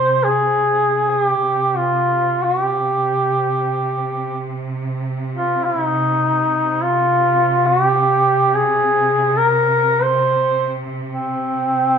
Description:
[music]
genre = caucasian folk, Caucasian lament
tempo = free time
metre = none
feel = none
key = C minor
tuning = A4 = 441 Hz
[part]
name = warm duduk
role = melody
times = 0.0-12.0 s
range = C4 to C5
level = -16 LUFS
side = equal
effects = none
[part]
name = rich studio cello section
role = drone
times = 0.0-12.0 s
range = C3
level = -24 LUFS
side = right 2 dB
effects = none
[sound]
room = moderate recital hall reverb, RT60 1.7 s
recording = minimal, uncompressed stereo recording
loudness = -15 LUFS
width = side -7 dB against mid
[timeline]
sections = 0.0-12.0 A section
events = none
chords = none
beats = free time

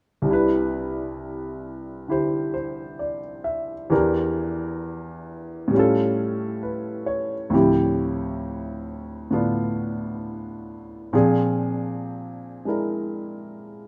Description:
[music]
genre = jazz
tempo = 66 BPM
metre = 4/4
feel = swing 68% on 8ths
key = C major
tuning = A4 = 440 Hz
[part]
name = clear grand piano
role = accompaniment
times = 0.2-13.9 s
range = C2 to E5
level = -25 LUFS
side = equal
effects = none
[sound]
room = moderate plate reverb, RT60 2.5 s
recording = none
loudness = -24 LUFS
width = mono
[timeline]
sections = 0.3-13.9 A section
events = none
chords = 0.3 Cmaj7; 3.9 Em7b5; 5.7 A7b13; 7.5 Dm11; 11.1 Bb9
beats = | 0.28 1.19 2.09 3.00 | 3.91 4.81 5.72 6.62 | 7.52 8.42 9.33 10.23 | 11.13 12.04 12.95 13.87

